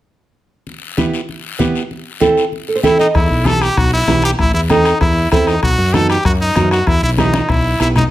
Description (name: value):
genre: latin, cumbia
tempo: 193 BPM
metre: 4/4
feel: straight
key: E harmonic minor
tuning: A4 = 440 Hz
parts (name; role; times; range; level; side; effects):
- congas; percussion; 0.7-8.0 s; none; -20 LUFS; left 1 dB; none
- guiro; percussion; 0.7-8.1 s; none; -28 LUFS; left 7 dB; none
- nylon-string guitar; accompaniment; 1.0-8.0 s; B3 to E5; -16 LUFS; right 3 dB; none
- brilliant trumpet; melody; 2.8-8.0 s; D#4 to A4; -17 LUFS; equal; none
- bombo; percussion; 3.1-8.1 s; none; -19 LUFS; left 2 dB; none
- woody fretless electric bass; bass; 3.2-8.1 s; A1 to F#2; -17 LUFS; equal; none
room: light reverb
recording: none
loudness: -12 LUFS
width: side -14 dB against mid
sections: 0.7-3.2 A section; 3.2-8.1 B section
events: nylon-string guitar fill 2.5-3.2; drum fill 7.2-8.1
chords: 0.7 Em; 1.9 Am; 3.2 Em; 4.4 Am; 5.6 B; 6.9 Em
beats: | 0.67 0.98 1.29 1.60 | 1.91 2.22 2.53 2.84 | 3.15 3.46 3.77 4.08 | 4.39 4.70 5.01 5.32 | 5.63 5.94 6.25 6.56 | 6.87 7.18 7.50 7.80